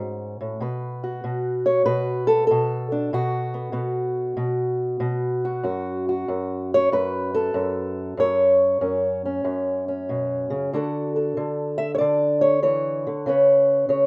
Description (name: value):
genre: acoustic country blues, solo or duo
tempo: 95 BPM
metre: 4/4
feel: swing 67% on 8ths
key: F# minor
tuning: A4 = 440 Hz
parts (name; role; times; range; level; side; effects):
- fingerpicked old ladder-braced acoustic guitar; solo; 0.0-14.1 s; F#2 to E5; -23 LUFS; equal; none
room: moderate studio ambience, RT60 0.5 s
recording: rough home demo mix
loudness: -23 LUFS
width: mono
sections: 0.0-14.1 A section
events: none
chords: 0.0 F#m; 0.6 B5; 5.6 F#m; 10.7 Dmaj7; 13.3 C#7(no3)